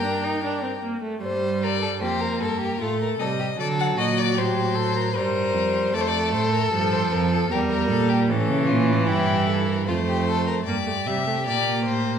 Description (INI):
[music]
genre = classical, baroque-style fugue for string quartet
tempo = 76 BPM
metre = 3/4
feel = straight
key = G minor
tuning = A4 = 439 Hz
[part]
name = rich violin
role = melody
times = 0.0-12.2 s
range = F4 to G5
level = -27 LUFS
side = left 7 dB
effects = none
[part]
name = rich violin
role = second line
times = 0.0-12.2 s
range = C#4 to C5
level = -27 LUFS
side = left 2 dB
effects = none
[part]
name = warm viola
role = accompaniment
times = 0.0-12.2 s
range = E3 to Eb4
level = -26 LUFS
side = right 2 dB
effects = none
[part]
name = dark cello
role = bass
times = 0.0-12.2 s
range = E2 to D3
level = -26 LUFS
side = right 4 dB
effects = none
[sound]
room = wet recital hall reverb, RT60 1.6 s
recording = minimal, uncompressed stereo recording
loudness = -20 LUFS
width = side -8 dB against mid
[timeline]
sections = 0.0-1.2 A section; 1.2-10.7 B section; 10.7-12.2 A section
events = none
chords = 0.0 Gm; 2.8 Adim; 3.6 D7; 5.2 Gm; 5.9 Dm/F; 7.5 Edim; 8.3 A7; 9.9 Fadd9; 10.7 Gm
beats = 0.43 | 1.23 2.02 2.81 | 3.59 4.38 5.16 | 5.94 6.72 7.51 | 8.30 9.08 9.88 | 10.67 11.46